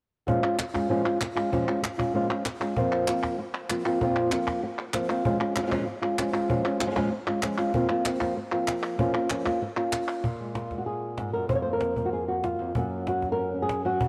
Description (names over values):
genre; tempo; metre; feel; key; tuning
flamenco; 193 BPM; 4/4; straight; Bb minor; A4 = 439 Hz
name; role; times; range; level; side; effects
flamenco guitar; melody; 0.3-14.1 s; F2 to Db5; -28 LUFS; equal; cassette tape, tape echo
cajon; percussion; 0.3-14.1 s; none; -35 LUFS; equal; none
palmas hand claps; percussion; 0.4-10.2 s; none; -36 LUFS; equal; none
room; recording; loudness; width
moderate lush hall reverb, RT60 2.6 s; home recording on cassette; -27 LUFS; mono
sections
0.3-10.2 A section; 10.2-14.1 B section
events
none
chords
0.3 Bbm7; 2.8 Fsus4; 5.2 Bbm7; 7.7 Fsus4; 9.0 Bbm; 10.2 Gbadd9 (rootless); 11.5 Fsus4; 12.7 Gb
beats
| 0.28 0.59 0.90 1.21 | 1.52 1.83 2.14 2.46 | 2.77 3.08 3.39 3.70 | 4.01 4.32 4.63 4.94 | 5.25 5.56 5.87 6.18 | 6.49 6.80 7.12 7.43 | 7.74 8.05 8.36 8.68 | 8.99 9.30 9.61 9.93 | 10.24 10.55 10.87 11.18 | 11.49 11.81 12.12 12.44 | 12.75 13.06 13.38 13.69 | 14.00